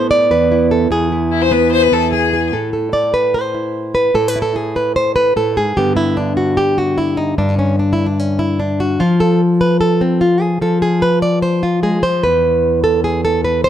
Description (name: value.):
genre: flamenco.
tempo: 148 BPM.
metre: 4/4.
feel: straight.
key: unclear.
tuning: A4 = 440 Hz.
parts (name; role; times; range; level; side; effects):
flamenco guitar; melody; 0.0-13.7 s; E2 to D5; -13 LUFS; equal; plate reverb.
clear violin; second line; 1.3-2.5 s; E4 to C5; -14 LUFS; left 7 dB; none.
room: moderate stone room reverb, RT60 1.0 s.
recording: none.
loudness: -13 LUFS.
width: side -10 dB against mid.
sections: 0.0-2.5 A section; 2.5-13.7 B section.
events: nylon-string guitar solo 2.5-13.7.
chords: 0.0 Asus2; 0.9 E; 2.5 Am; 5.8 G; 9.0 Fm; 12.2 E5.